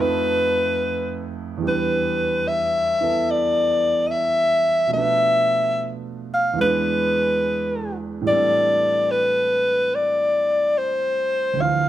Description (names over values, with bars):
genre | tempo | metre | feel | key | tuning
jazz ballad | 72 BPM | 4/4 | swing 69% on 8ths | unclear | A4 = 443 Hz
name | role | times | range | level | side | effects
breathy alto saxophone | melody | 0.0-11.9 s | B4 to F5 | -19 LUFS | left 1 dB | none
warm grand piano | accompaniment | 0.0-11.9 s | D2 to C5 | -26 LUFS | right 5 dB | none
room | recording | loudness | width
moderate club reverb, RT60 0.8 s | none | -18 LUFS | side -12 dB against mid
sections
0.0-11.9 A section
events
none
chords
0.0 F7#11; 1.6 Em7; 4.9 Bm7b5; 6.6 E7; 8.2 Am11